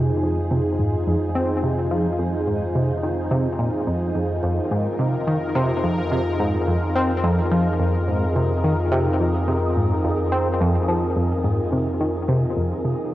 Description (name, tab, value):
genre	ambient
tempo	107 BPM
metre	4/4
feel	straight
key	F minor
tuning	A4 = 441 Hz
part	sweeping resonant pad	sustained chords	0.0-13.1 s	Eb4 to Bb4	-25 LUFS	equal	chorus, shimmer reverb
part	tight sequenced synth	riff	0.0-12.9 s	F2 to C4	-22 LUFS	equal	chorus, ping-pong delay
part	round analog bass	bass	0.0-13.1 s	F2	-26 LUFS	equal	tube saturation
part	wind-like tuned noise texture	texture	0.0-13.1 s	C4 to C5	-32 LUFS	right 1 dB	built-in reverb, shimmer reverb
room	moderate spring reverb, RT60 1.3 s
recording	home recording on cassette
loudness	-19 LUFS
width	side -15 dB against mid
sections	0.0-13.1 A section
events	fade-in on synth texture 0.0-13.1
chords	0.0 Fm7